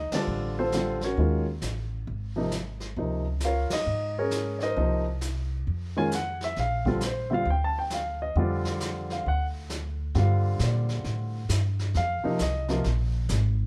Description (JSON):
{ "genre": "jazz piano trio", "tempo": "134 BPM", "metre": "4/4", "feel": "swing 65% on 8ths", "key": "Bb major, G minor from 10.2 s", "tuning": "A4 = 440 Hz", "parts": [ { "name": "dark grand piano", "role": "melody", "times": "0.0-12.8 s", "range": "C3 to A5", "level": "-30 LUFS", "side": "equal", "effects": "none" }, { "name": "upright bass", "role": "bass", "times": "0.0-13.7 s", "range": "Ab1 to Bb2", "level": "-30 LUFS", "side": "equal", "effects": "none" }, { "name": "jazz brush drum kit", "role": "drums", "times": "0.1-13.7 s", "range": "brushed snare drum, hi-hat, kick drum, ride cymbal, snare drum", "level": "-40 LUFS", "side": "equal", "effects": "none" } ], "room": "light reverb", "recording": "band playing live in one room", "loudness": "-28 LUFS", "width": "mono", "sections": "0.0-10.2 A section; 10.2-13.7 B section", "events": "band accent 0.1, 3.6", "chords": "0.0 Dm7; 1.2 Ebm7; 2.1 N.C.; 3.0 Db6; 4.8 Cm7; 5.7 Fm; 6.6 Bbadd9; 9.3 N.C.; 10.2 Gm9; 11.9 F5; 12.8 Absus2", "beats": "0.28 0.73 | 1.18 1.62 2.07 2.52 | 2.97 3.42 3.87 4.32 | 4.77 5.21 5.66 6.11 | 6.56 7.01 7.46 7.91 | 8.36 8.81 9.26 9.71 | 10.15 10.60 11.05 11.50 | 11.95 12.40 12.85 13.30" }